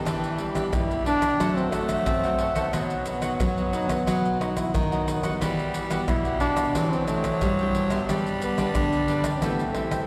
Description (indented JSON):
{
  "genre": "samba and choro",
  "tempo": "90 BPM",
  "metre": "4/4",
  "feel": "straight",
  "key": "E minor",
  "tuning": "A4 = 439 Hz",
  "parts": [
    { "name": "nylon-string guitar", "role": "accompaniment", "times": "0.0-10.1 s", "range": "F#2 to G4", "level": "-36 LUFS", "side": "equal", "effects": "none" },
    { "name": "growling tenor saxophone", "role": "second line", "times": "0.1-10.1 s", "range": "E3 to A3", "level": "-33 LUFS", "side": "equal", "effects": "none" },
    { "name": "cavaquinho", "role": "accompaniment", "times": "0.1-10.1 s", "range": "D4 to G5", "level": "-35 LUFS", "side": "equal", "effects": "none" },
    { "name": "nylon-string guitar", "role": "bass", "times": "0.1-10.0 s", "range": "B2 to C4", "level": "-32 LUFS", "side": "equal", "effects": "none" },
    { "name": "maracas, surdo, pandeiro and tamborim", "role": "percussion", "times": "0.1-10.1 s", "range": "none", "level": "-31 LUFS", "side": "equal", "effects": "none" },
    { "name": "mellow trombone", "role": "melody", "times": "0.4-10.1 s", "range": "F#3 to E4", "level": "-31 LUFS", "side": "equal", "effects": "none" }
  ],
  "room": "wet concert hall reverb, RT60 2.5 s",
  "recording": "recorded in a church or concert hall",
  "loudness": "-25 LUFS",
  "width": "mono",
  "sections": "0.0-10.1 A section",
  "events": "none",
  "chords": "0.1 Em7; 1.4 F#dim; 2.7 B; 5.4 Emadd9; 6.8 Cadd9/E; 8.1 G; 9.4 Am7"
}